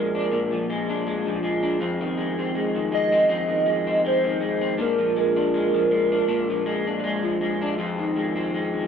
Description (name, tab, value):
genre	indie pop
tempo	80 BPM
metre	4/4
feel	swing 55% on 16ths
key	F dorian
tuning	A4 = 440 Hz
part	warbly nostalgic lead	melody	0.0-7.4 s	Bb4 to Eb5	-22 LUFS	right 1 dB	analog chorus
part	electric guitar through a small old amp	accompaniment	0.0-8.9 s	F2 to D4	-24 LUFS	left 1 dB	lush chorus, warbly pitch drift
room	moderate spring reverb, RT60 1.9 s, digital ambience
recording	cassette tape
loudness	-21 LUFS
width	side -7 dB against mid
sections	0.0-8.9 A section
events	none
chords	0.0 Bb7; 1.8 Fm7; 4.8 Bb7; 7.8 Fm7